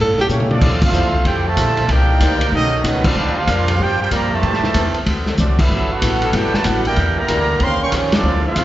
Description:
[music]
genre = jazz, big band swing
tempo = 189 BPM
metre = 4/4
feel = swing 64% on 8ths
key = D minor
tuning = A4 = 443 Hz
[part]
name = archtop guitar, miked and amplified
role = accompaniment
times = 0.0-8.6 s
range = A2 to C5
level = -26 LUFS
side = left 5 dB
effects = plate reverb, slapback echo
[part]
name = upright bass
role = bass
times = 0.0-8.6 s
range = G1 to Bb2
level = -19 LUFS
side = equal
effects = none
[part]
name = dark baby grand piano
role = accompaniment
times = 0.2-0.6 s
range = F3 to C5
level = -29 LUFS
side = left 2 dB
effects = none
[part]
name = vintage drum kit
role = drums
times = 0.2-8.6 s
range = crash cymbal, hi-hat, kick drum, ride cymbal, snare drum, toms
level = -21 LUFS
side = equal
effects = none
[part]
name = warm trumpet section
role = melody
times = 0.3-8.6 s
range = A3 to Db6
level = -21 LUFS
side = right 1 dB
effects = plate reverb, slapback echo
[part]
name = clear trombone section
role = second line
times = 0.3-8.6 s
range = C3 to G4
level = -22 LUFS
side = right 4 dB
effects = plate reverb, slapback echo
[part]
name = clear trombone section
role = sustained chords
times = 0.9-8.6 s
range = F3 to D5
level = -27 LUFS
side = left 2 dB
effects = plate reverb
[sound]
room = light reverb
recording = live gig heard through the venue's PA, recital hall reverb, nothing above 7.7 kHz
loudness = -14 LUFS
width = side -14 dB against mid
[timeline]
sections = 0.6-8.6 A section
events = drum fill 0.3-0.6, 5.4-5.7; band accent 0.8, 3.0, 5.5, 8.1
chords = 0.0 A7b9; 0.6 Dm9; 1.9 Cm9; 2.5 B9; 3.2 Bb69; 4.4 Am9; 5.1 D7; 5.7 Gmaj13; 7.0 Em7b5; 7.6 Eb13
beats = 0.30 | 0.62 0.94 1.25 1.57 | 1.89 2.21 2.53 2.84 | 3.16 3.48 3.80 4.12 | 4.43 4.75 5.07 5.38 | 5.70 6.02 6.33 6.65 | 6.97 7.29 7.60 7.92 | 8.24 8.56

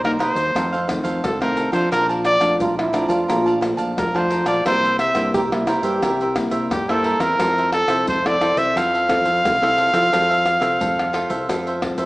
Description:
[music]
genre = samba and choro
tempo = 88 BPM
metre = 4/4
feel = straight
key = F major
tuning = A4 = 440 Hz
[part]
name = bright trumpet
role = melody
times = 0.0-12.1 s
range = G4 to F5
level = -19 LUFS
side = equal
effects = none
[part]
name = cavaquinho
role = accompaniment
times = 0.0-12.1 s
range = Eb4 to A5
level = -26 LUFS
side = right 2 dB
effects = none
[part]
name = nylon-string guitar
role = accompaniment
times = 0.0-12.1 s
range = F2 to A4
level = -24 LUFS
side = left 1 dB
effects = none
[part]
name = fretless electric bass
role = bass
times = 0.0-12.1 s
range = Bb1 to F3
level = -30 LUFS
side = equal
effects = none
[part]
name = egg shaker, pandeiro, tamborim and surdo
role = percussion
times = 0.0-12.1 s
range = none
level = -26 LUFS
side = left 1 dB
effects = none
[part]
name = clear trombone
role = second line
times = 2.6-6.5 s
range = E4 to G4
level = -22 LUFS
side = right 1 dB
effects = none
[sound]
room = wet large studio reverb, RT60 1.3 s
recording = small speaker sound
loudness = -17 LUFS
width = side -20 dB against mid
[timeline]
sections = 0.0-12.1 A section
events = none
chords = 0.0 Cm7; 0.6 F7; 1.9 Bbmaj7; 4.7 C7; 7.4 Fmaj7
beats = 0.55 1.24 | 1.92 2.60 3.29 3.97 | 4.66 5.34 6.03 6.71 | 7.39 8.08 8.76 9.44 | 10.13 10.81 11.49

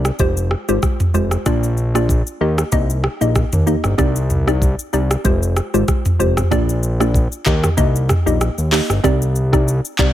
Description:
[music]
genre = afrobeats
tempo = 95 BPM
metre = 4/4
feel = swing 55% on 16ths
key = Eb major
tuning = A4 = 440 Hz
[part]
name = hollow square pluck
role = accompaniment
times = 0.0-10.1 s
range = Ab3 to Eb5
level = -20 LUFS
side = equal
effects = chorus
[part]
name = fat analog bass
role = bass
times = 0.0-10.1 s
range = F1 to Eb2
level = -18 LUFS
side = equal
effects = none
[part]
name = afro-pop drum kit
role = drums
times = 0.1-10.1 s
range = handclaps, hi-hat, kick drum, rim click, shaker, toms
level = -18 LUFS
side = equal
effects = none
[sound]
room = little or no reverb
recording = none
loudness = -14 LUFS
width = side -12 dB against mid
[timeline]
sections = 0.0-6.5 A section; 6.5-10.1 B section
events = none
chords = 0.2 Fmadd9; 1.5 Bb; 2.4 Eb; 4.0 Cmadd9; 5.2 Fmadd9; 6.5 Bb; 7.5 Eb; 9.0 Cmadd9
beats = 0.20 0.83 | 1.46 2.09 2.72 3.35 | 3.99 4.62 5.25 5.88 | 6.51 7.14 7.78 8.41 | 9.04 9.67

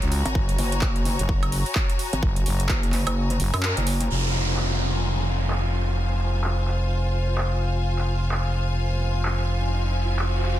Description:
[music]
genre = bass house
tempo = 128 BPM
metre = 4/4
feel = swing 59% on 16ths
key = F phrygian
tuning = A4 = 444 Hz
[part]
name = growling FM bass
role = bass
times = 0.0-10.6 s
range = F1 to Db2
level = -23 LUFS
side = equal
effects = tube saturation, sidechain pumping
[part]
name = big-room dance drum kit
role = drums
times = 0.0-10.5 s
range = handclaps, hi-hat, woodblock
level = -30 LUFS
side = right 1 dB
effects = overdrive, low-pass filter on hats, small room reverb, low-pass filter on snare, low-pass filter on perc
[part]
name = clear symphonic string section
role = texture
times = 0.0-10.6 s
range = F4 to Bb5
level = -30 LUFS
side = left 2 dB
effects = sidechain pumping
[part]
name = pulsing pluck wobble bass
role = bass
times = 0.3-4.1 s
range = Gb1 to Gb2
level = -24 LUFS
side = equal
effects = chorus, tube saturation, sidechain pumping
[part]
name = electronic kick drum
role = drums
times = 0.4-2.8 s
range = none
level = -24 LUFS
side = equal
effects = overdrive, small room reverb
[part]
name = downlifter and riser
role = sound effects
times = 4.1-10.6 s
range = none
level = -31 LUFS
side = right 1 dB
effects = none
[sound]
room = light reverb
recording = dense, heavily limited modern master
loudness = -21 LUFS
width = side -13 dB against mid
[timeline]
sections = 0.0-4.1 A section; 4.1-10.6 B section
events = drop 0.0-4.1; kick drops out 3.2-4.1; band accent 3.6; riser 7.9-10.6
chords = 0.0 Gb; 4.1 Fm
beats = | 0.35 0.82 1.29 1.76 | 2.23 2.69 3.16 3.63 | 4.10 4.57 5.04 5.51 | 5.98 6.45 6.91 7.38 | 7.85 8.32 8.79 9.26 | 9.73 10.20

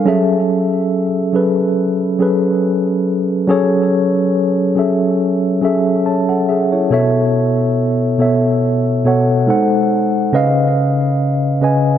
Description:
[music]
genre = R&B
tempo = 70 BPM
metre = 4/4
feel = straight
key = F# dorian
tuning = A4 = 439 Hz
[part]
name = mellow tine electric piano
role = solo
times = 0.0-12.0 s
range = B2 to A5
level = -13 LUFS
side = equal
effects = slow stereo tremolo, ping-pong delay
[sound]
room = moderate plate reverb, RT60 3.0 s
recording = dreamy mix soaked in reverb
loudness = -13 LUFS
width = side -10 dB against mid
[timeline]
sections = 0.0-12.0 A section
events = none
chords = 0.1 F#m7; 6.9 B9sus4; 9.5 G#7b9; 10.3 C#9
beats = | 0.05 0.91 1.77 2.63 | 3.48 4.34 5.20 6.05 | 6.91 7.77 8.63 9.48 | 10.34 11.20

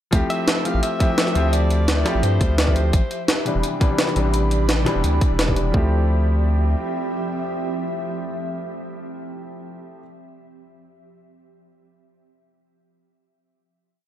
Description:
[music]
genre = liquid drum and bass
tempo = 171 BPM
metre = 4/4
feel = straight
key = D minor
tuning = A4 = 440 Hz
[part]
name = clear grand piano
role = accompaniment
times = 0.1-10.0 s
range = C3 to G4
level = -25 LUFS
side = left 1 dB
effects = digital delay
[part]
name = ethereal airy pad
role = sustained chords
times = 1.7-9.3 s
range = F3 to B5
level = -30 LUFS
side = right 1 dB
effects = ensemble chorus, built-in reverb, sidechain pumping
[part]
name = saturated sub bass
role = bass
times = 0.1-6.8 s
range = E1 to G2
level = -19 LUFS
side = equal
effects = none
[part]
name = electronic kick drum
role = drums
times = 0.1-5.8 s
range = none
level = -19 LUFS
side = equal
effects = overdrive
[part]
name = jungle sampler-style drum kit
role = drums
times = 0.1-5.6 s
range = hi-hat, snare drum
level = -23 LUFS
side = equal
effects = none
[part]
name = breathy alto saxophone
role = melody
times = 0.3-3.3 s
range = C5 to F5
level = -27 LUFS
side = equal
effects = digital delay
[sound]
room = light reverb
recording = dark, warm production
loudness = -18 LUFS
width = side -12 dB against mid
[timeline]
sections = 0.1-5.7 drop; 5.7-8.5 final chord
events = drop 0.1-5.7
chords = 0.1 Dm11; 2.9 Am11; 5.7 Dm11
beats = | 0.13 0.48 0.83 1.18 | 1.53 1.88 2.23 2.58 | 2.93 3.28 3.63 3.99 | 4.34 4.69 5.04 5.39 | 5.74 6.09 6.44 6.79 | 7.14 7.50 7.85 8.20

